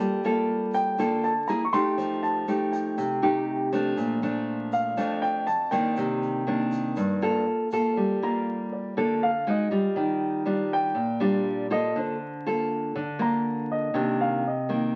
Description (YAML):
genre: bossa nova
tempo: 120 BPM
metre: 4/4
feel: straight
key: G minor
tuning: A4 = 440 Hz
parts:
  - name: nylon-string guitar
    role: accompaniment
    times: 0.0-15.0 s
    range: F2 to A4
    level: -27 LUFS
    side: equal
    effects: none
  - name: egg shaker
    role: percussion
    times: 0.2-8.0 s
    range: none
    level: -61 LUFS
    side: equal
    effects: none
  - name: warm grand piano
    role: melody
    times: 0.7-15.0 s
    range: C5 to C#6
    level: -31 LUFS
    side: equal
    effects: none
room: wet studio reverb, RT60 0.9 s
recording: very old 78 rpm record, vinyl crackle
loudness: -26 LUFS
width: mono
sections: 0.0-8.0 A section; 8.0-15.0 B section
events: grand piano solo 8.0-15.0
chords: 0.0 Gm9; 1.5 A7(no3); 2.0 F9; 4.0 Bbmaj7; 6.0 Cm9; 7.5 Fadd11/Bb; 8.0 Gm9; 9.5 Fm9; 10.0 Ebmaj9; 11.9 Bbmaj9/D; 13.9 Cm9